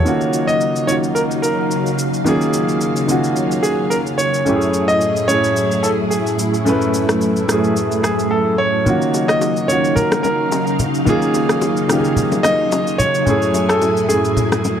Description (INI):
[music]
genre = amapiano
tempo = 109 BPM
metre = 4/4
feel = swing 55% on 16ths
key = unclear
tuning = A4 = 440 Hz
[part]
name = clear concert grand piano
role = melody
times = 0.0-14.8 s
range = Ab4 to Eb5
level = -19 LUFS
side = right 1 dB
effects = analog delay
[part]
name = warm concert grand piano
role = accompaniment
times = 0.0-14.8 s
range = Gb2 to Cb5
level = -19 LUFS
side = equal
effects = none
[part]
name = string machine, violins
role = sustained chords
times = 0.0-14.8 s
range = A2 to Ab5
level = -20 LUFS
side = equal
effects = ensemble chorus
[part]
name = electronic shaker and rim click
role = drums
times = 0.1-14.8 s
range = none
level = -24 LUFS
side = left 1 dB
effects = none
[part]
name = congas and bongos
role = percussion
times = 8.9-14.8 s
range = none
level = -22 LUFS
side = left 2 dB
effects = none
[sound]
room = moderate studio reverb, RT60 0.6 s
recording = dark, warm production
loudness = -14 LUFS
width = side -8 dB against mid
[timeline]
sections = 0.1-14.8 A section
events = drums muted 8.3-8.9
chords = 0.1 Ebm9; 4.5 Gbm9; 8.9 Ebm9; 13.3 Gbm9